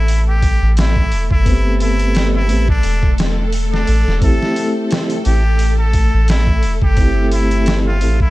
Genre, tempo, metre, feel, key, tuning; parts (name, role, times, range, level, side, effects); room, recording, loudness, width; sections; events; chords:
trip hop; 87 BPM; 4/4; swing 55% on 16ths; A minor; A4 = 441 Hz
trumpet with straight mute; melody; 0.0-8.3 s; D4 to A4; -23 LUFS; equal; tape echo
string machine, cellos; sustained chords; 0.0-8.3 s; A4; -25 LUFS; left 1 dB; ensemble chorus
soft dub sub bass; bass; 0.0-8.3 s; E1 to A1; -15 LUFS; equal
trip hop sampler-style drum kit; drums; 0.1-8.3 s; hi-hat, kick drum, snare drum; -18 LUFS; equal; vintage 12-bit sampler grit, small room ambience
mellow tonewheel organ; accompaniment; 1.4-8.2 s; A3 to G4; -21 LUFS; equal; slow rotary speaker, harmonic tremolo
little or no reverb; -12 LUFS; side -18 dB against mid
0.0-8.3 A section
0.0 Am9; 4.2 C6